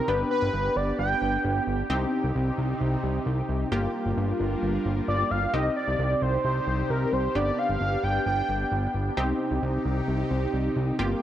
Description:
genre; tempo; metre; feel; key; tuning
pop; 132 BPM; 4/4; straight; C minor; A4 = 440 Hz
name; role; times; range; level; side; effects
octave-doubled lead; melody; 0.0-1.6, 5.1-8.9 s; Bb4 to G5; -28 LUFS; right 1 dB; chorus, phaser, analog delay
funky polysynth comp; accompaniment; 0.0-11.2 s; Bb3 to G4; -30 LUFS; left 1 dB; chorus
phased analog pad; sustained chords; 0.0-11.2 s; C3 to Bb4; -32 LUFS; right 1 dB; phaser, chorus
fat analog bass; bass; 0.1-11.1 s; G1 to C2; -28 LUFS; equal; none
room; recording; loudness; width
light reverb, digital ambience; none; -24 LUFS; side -11 dB against mid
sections
0.0-11.2 A section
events
none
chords
0.1 G; 1.9 Cm; 3.7 Gm7; 5.5 Cm; 7.4 G; 9.2 Cm

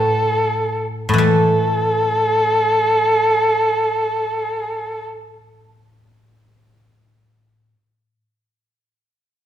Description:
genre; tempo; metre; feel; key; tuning
chinese traditional, Chinese chamber ensemble; free time; none; none; unclear; A4 = 440 Hz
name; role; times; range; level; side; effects
dark erhu; melody; 0.0-5.1 s; A4; -17 LUFS; equal; none
guzheng; accompaniment; 0.0-7.8 s; A2 to A3; -20 LUFS; equal; none
room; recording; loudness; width
wet recital hall reverb, RT60 1.4 s; minimal, uncompressed stereo recording; -15 LUFS; side -10 dB against mid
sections
0.0-1.2 A section; 1.2-4.7 B section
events
slowing down 0.0-1.2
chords
none

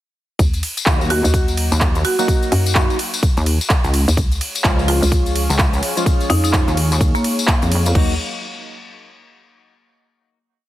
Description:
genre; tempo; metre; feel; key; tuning
bass house; 127 BPM; 4/4; swing 60% on 16ths; Eb minor; A4 = 441 Hz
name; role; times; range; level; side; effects
hollow knocking FM bass; bass; 0.4-8.2 s; Db2 to Gb2; -18 LUFS; equal; sidechain pumping
big-room dance drum kit; drums; 0.4-8.1 s; crash cymbal, handclaps, hi-hat, ride cymbal, tambourine; -22 LUFS; equal; overdrive
electronic kick drum; drums; 0.4-8.1 s; none; -17 LUFS; equal; none
percussive organ stab; stabs; 0.9-8.1 s; F3 to Gb4; -25 LUFS; left 1 dB; lush chorus, sidechain pumping, ping-pong delay
pulsing pluck wobble bass; bass; 0.9-7.9 s; Db2 to F2; -18 LUFS; equal; chorus, sidechain pumping
marimba with medium hard mallets; melody; 1.1-7.8 s; Bb3 to Gb4; -24 LUFS; right 1 dB; ping-pong delay
dark analog pad; sustained chords; 4.5-8.2 s; Ab4 to Db6; -29 LUFS; equal; chorus, sidechain pumping
room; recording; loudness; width
light reverb; heavily compressed radio sound; -14 LUFS; side -14 dB against mid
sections
0.4-8.0 drop; 8.0-9.8 final chord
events
drop 0.4-8.0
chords
0.4 Ebm; 4.2 Db; 8.0 Ebm

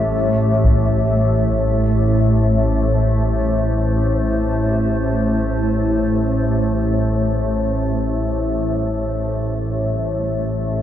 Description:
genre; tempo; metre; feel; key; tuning
dark ambient drone; free time; none; none; A minor; A4 = 437 Hz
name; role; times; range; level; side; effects
granular cloud pad; sustained chords; 0.0-10.8 s; A3 to E5; -27 LUFS; equal; built-in reverb
clear baby grand piano; arpeggios; 0.0-10.8 s; A2; -47 LUFS; right 2 dB; none
organ-like drone; drone; 0.0-10.8 s; A1 to A2; -17 LUFS; equal; ensemble chorus, built-in reverb
solo taiko drums; percussion; 0.6-0.8 s; none; -23 LUFS; equal; none
room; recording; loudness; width
wet huge ambient reverb, RT60 7.7 s; dark, warm production; -16 LUFS; side -11 dB against mid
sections
0.0-10.8 A section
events
fade-out on ambient pad 0.0-10.8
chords
0.0 Am7

